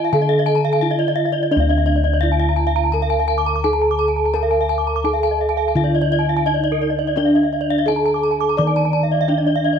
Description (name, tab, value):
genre	Balinese gamelan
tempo	85 BPM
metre	4/4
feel	straight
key	D pelog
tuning	A4 = 440 Hz
part	gamelan-type bronze metallophone	melody	0.0-9.8 s	D4 to D5	-21 LUFS	equal	none
part	gamelan-type bronze metallophone	arpeggios	0.0-9.7 s	D5 to D6	-23 LUFS	left 14 dB	none
part	gamelan-type bronze metallophone	arpeggios	0.0-9.8 s	Bb4-40c to D6	-23 LUFS	right 14 dB	none
part	gamelan-type bossed gongs	bass	0.1-9.8 s	D2 to Bb4-40c	-20 LUFS	left 1 dB	none
room	light reverb, studio reverb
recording	1960s-style stereo with parts hard left and right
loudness	-15 LUFS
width	side -7 dB against mid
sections	0.0-1.5 A section; 1.5-9.8 B section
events	none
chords	none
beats	0.13 0.82 | 1.52 2.23 2.94 3.64 | 4.35 5.05 5.76 6.46 | 7.17 7.88 8.58 9.29